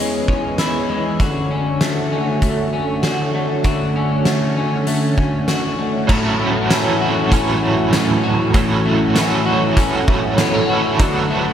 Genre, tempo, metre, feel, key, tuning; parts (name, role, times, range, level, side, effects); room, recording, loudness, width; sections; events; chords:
dream pop; 98 BPM; 4/4; straight; A major; A4 = 440 Hz
lush unison pad; sustained chords; 0.0-11.5 s; D3 to G#4; -21 LUFS; right 1 dB; chorus, phaser
electric guitar at the edge of break-up; arpeggios; 0.0-11.5 s; E2 to F#4; -20 LUFS; left 2 dB; wide subtle chorus, digital delay
oversized low-tuned drum kit; drums; 0.3-11.1 s; crash cymbal, hi-hat, kick drum, snare drum, tambourine; -21 LUFS; equal
overdriven semi-hollow guitar; accompaniment; 6.1-11.5 s; A2 to A4; -19 LUFS; right 4 dB; tremolo, analog chorus
moderate concert hall reverb, RT60 2.0 s, small room reverb; -15 LUFS; side -9 dB against mid
0.0-6.1 A section; 6.1-11.5 B section
0.0 C#m7/E; 1.2 Dmaj7; 6.1 A6; 11.0 D6